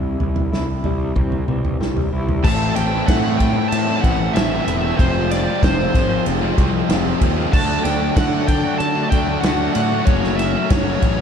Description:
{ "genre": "quiet-loud alternative rock", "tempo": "94 BPM", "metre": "4/4", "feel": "straight", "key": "A dorian", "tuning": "A4 = 440 Hz", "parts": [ { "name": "electric guitar through a small old amp", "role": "arpeggios", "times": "0.0-2.4 s", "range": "C3 to E4", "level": "-28 LUFS", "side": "left 2 dB", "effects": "tremolo, tape echo, slapback echo" }, { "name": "fuzz picked electric bass", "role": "bass", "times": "0.0-11.2 s", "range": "E1 to D3", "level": "-22 LUFS", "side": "equal", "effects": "overdrive" }, { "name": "loose indie drum kit", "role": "drums", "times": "0.2-11.2 s", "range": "crash cymbal, kick drum, ride cymbal, snare drum, toms", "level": "-20 LUFS", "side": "equal", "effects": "none" }, { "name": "high-gain lead guitar", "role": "melody", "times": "2.4-11.2 s", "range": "C5 to A5", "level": "-24 LUFS", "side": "equal", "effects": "distortion" }, { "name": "mellow tonewheel organ", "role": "sustained chords", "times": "2.4-11.2 s", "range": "F#3 to A5", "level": "-30 LUFS", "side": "right 1 dB", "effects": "none" }, { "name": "overdriven electric guitar", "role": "riff", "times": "2.4-11.2 s", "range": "A2 to F#4", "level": "-26 LUFS", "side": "right 11 dB", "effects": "spring reverb, slapback echo" }, { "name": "sludgy distorted guitar", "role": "riff", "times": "2.4-11.2 s", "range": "A2 to F#4", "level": "-23 LUFS", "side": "left 11 dB", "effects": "overdrive" }, { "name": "tight distorted guitar", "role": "riff", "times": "2.4-11.2 s", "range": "F2 to D4", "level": "-27 LUFS", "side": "right 1 dB", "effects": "distortion, slapback echo" } ], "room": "light reverb, small room reverb", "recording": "none", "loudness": "-16 LUFS", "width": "side -7 dB against mid", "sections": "0.0-2.4 A section; 2.4-11.2 B section", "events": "none", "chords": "0.0 C; 2.4 Am; 5.0 Fm; 7.5 D; 10.1 F#m" }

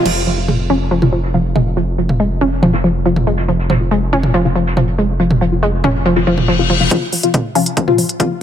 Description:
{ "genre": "driving peak-time techno", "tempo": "140 BPM", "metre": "4/4", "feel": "straight", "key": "F minor", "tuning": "A4 = 441 Hz", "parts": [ { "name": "filtered dub chord stab", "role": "stabs", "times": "0.0-8.3 s", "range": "C3 to F4", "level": "-19 LUFS", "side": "left 4 dB", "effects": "analog chorus, cassette tape, sidechain pumping, digital delay" }, { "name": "wide unison pluck", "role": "riff", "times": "0.1-8.3 s", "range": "F3 to Db4", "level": "-17 LUFS", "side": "equal", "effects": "tube saturation, sidechain pumping, digital delay" }, { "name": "growling FM bass", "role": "bass", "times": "0.1-6.9 s", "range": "F1", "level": "-18 LUFS", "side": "equal", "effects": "sidechain pumping" }, { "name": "jazz brush drum kit", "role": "drums", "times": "0.1-6.9 s", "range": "hi-hat, snare drum", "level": "-29 LUFS", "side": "right 2 dB", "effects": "sidechain pumping on hats, high-pass filter on hats, low-pass filter on hats, high-pass filter on snare, low-pass filter on snare, high-pass filter on room, low-pass filter on room" }, { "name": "techno drum kit", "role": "drums", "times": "0.1-8.3 s", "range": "crash cymbal, hi-hat, toms", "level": "-18 LUFS", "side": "right 1 dB", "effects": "none" }, { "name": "reverse cymbal", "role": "sound effects", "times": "6.2-6.9 s", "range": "none", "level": "-20 LUFS", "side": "left 7 dB", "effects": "none" }, { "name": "electronic kick drum", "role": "drums", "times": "6.9-8.3 s", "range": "none", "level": "-18 LUFS", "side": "equal", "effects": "high-pass filter on kick" } ], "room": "light reverb, digital ambience", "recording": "none", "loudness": "-12 LUFS", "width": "side -9 dB against mid", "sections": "0.1-6.9 A section; 6.9-8.4 B section", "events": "filter sweep on synth arpeggio sound 0.1-6.9, 6.9-8.4; reverse cymbal 6.2-6.9; build-up 6.9-8.4", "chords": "0.1 F5" }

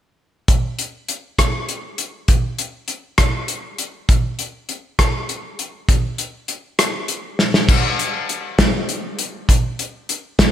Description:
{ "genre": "rock", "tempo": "67 BPM (dotted quarters)", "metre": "6/8", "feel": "straight", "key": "none", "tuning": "none", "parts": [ { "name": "natural country drum kit", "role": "drums", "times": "0.5-10.5 s", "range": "crash cymbal, hi-hat, kick drum, rim click, snare drum", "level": "-16 LUFS", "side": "equal", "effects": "none" } ], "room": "light reverb", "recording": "none", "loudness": "-18 LUFS", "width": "side -11 dB against mid", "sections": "0.5-7.7 A section; 7.7-10.5 B section", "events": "drum fill 7.4", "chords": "none" }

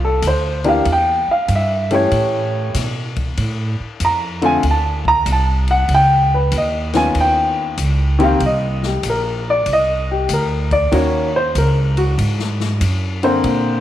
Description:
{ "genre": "jazz piano trio", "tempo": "95 BPM", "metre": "4/4", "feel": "swing 67% on 8ths", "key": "unclear", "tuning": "A4 = 439 Hz", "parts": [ { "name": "warm baby grand piano", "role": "melody", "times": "0.0-13.8 s", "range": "D3 to Bb5", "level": "-16 LUFS", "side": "equal", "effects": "slapback echo" }, { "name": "upright bass", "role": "bass", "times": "0.0-13.8 s", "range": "Bb1 to Cb3", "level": "-19 LUFS", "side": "right 1 dB", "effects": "none" }, { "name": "open jazz drum kit", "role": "drums", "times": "0.2-13.6 s", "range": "hi-hat, kick drum, ride cymbal, snare drum", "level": "-27 LUFS", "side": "left 4 dB", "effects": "none" } ], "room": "light reverb, small room ambience", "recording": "1960s-style stereo", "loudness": "-14 LUFS", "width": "side -12 dB against mid", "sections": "0.0-13.8 A section", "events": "grand piano solo 0.0-13.8", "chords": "0.0 Bbadd9; 0.9 Em6; 2.1 A7; 3.4 Dm7; 5.9 Db9; 8.4 Bbadd9; 10.9 Ebm7; 12.2 Ab7" }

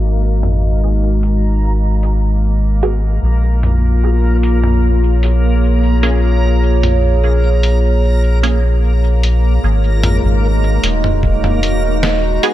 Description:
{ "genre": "ambient dub", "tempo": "75 BPM", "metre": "4/4", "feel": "straight", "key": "unclear", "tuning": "A4 = 440 Hz", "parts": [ { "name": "warbly tape-like pad", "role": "sustained chords", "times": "0.0-12.5 s", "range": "G#3 to D#5", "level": "-19 LUFS", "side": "right 1 dB", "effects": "chorus, built-in reverb" }, { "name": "soft dub sub bass", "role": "bass", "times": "0.0-12.4 s", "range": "D#1 to A#1", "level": "-13 LUFS", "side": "equal", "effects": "none" }, { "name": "backwards swelling texture", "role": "texture", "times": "0.0-12.5 s", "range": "A#3 to A#5", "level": "-25 LUFS", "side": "left 1 dB", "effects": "built-in reverb" }, { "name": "lo-fi sampler-style drum kit", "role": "drums", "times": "0.4-12.5 s", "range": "hi-hat, snare drum, toms", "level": "-21 LUFS", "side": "equal", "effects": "none" }, { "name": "filtered dub chord stab", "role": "stabs", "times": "2.8-12.5 s", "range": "A#3 to G#4", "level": "-22 LUFS", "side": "right 3 dB", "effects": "phaser, dub echo" }, { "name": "electronic kick drum", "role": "drums", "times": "11.2-11.4 s", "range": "none", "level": "-18 LUFS", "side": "equal", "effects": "none" } ], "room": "little or no reverb", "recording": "low-pass filter", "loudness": "-12 LUFS", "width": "side -13 dB against mid", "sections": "0.0-9.6 A section; 9.6-12.5 B section", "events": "filter sweep 0.0-9.6", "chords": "0.0 G#7(no3); 3.2 A#m7; 9.6 G#7(no3)" }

